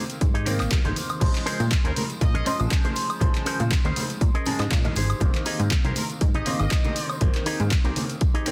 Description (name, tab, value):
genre	filtered disco house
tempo	120 BPM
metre	4/4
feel	swing 54% on 16ths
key	unclear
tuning	A4 = 439 Hz
part	bright baby grand piano	accompaniment	0.0-8.5 s	Db3 to C5	-33 LUFS	equal	phaser, sidechain pumping
part	electric guitar with an envelope filter	riff	0.0-8.5 s	Db4 to Eb5	-34 LUFS	equal	sidechain pumping
part	punchy analog drum machine	drums	0.1-8.5 s	crash cymbal, handclaps, hi-hat, woodblock	-33 LUFS	equal	sidechain pumping on hats, sidechain pumping on perc, sidechain pumping on cymbals
part	tambourine and congas	percussion	0.1-8.5 s	none	-36 LUFS	equal	sidechain pumping on perc
part	plucky analog bass	bass	0.2-7.9 s	Ab1 to Bb2	-28 LUFS	equal	sidechain pumping
part	electronic kick drum	drums	0.2-8.3 s	none	-24 LUFS	equal	none
part	clear trumpet section	melody	1.8-2.6, 5.8-7.3 s	Bb4 to Eb5	-38 LUFS	equal	sidechain pumping, delay
room	digital ambience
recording	dense, heavily limited modern master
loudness	-24 LUFS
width	mono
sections	0.0-8.5 A section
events	none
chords	0.0 Abmaj7; 1.2 Bbm9; 5.0 Abmaj7